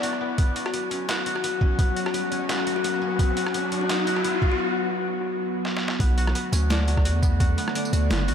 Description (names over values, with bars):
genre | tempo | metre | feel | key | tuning
half-time drum and bass | 171 BPM | 4/4 | swing 55% on 16ths, half-time | B minor | A4 = 438 Hz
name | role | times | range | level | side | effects
bowed-like drone | sustained chords | 0.0-8.3 s | D3 to D5 | -30 LUFS | equal | built-in reverb, vintage 12-bit sampler grit, sidechain pumping
koto | arpeggios | 0.0-8.3 s | F#3 to F#4 | -30 LUFS | left 1 dB | low-pass filter, diffuse ambient delay
boom bap sampler-style drum kit | drums | 0.0-8.3 s | hi-hat, rim click, snare drum, tambourine | -30 LUFS | equal | overdrive, high-pass filter on hats, small room ambience, high-pass filter on snare, high-pass filter on perc
electronic kick drum | drums | 0.4-7.5 s | none | -21 LUFS | equal | overdrive, small room ambience
riser | sound effects | 1.4-4.6 s | none | -33 LUFS | left 2 dB | none
kalimba | melody | 0.7-4.6 s | F#4 | -31 LUFS | left 4 dB | vintage 12-bit sampler grit, tape echo
long sustained 808-style bass | bass | 6.0-8.3 s | F#1 to E2 | -22 LUFS | equal | none
room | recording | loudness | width
wet cathedral reverb, RT60 5.4 s | dreamy mix soaked in reverb | -22 LUFS | side -8 dB against mid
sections
0.0-6.0 A section; 6.0-8.3 B section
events
build-up 0.0-6.0; riser 1.4-4.6; break 4.6-6.0; drum fill 5.6-6.0; drop 6.0-8.3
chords
0.4 F#5; 6.0 Bm7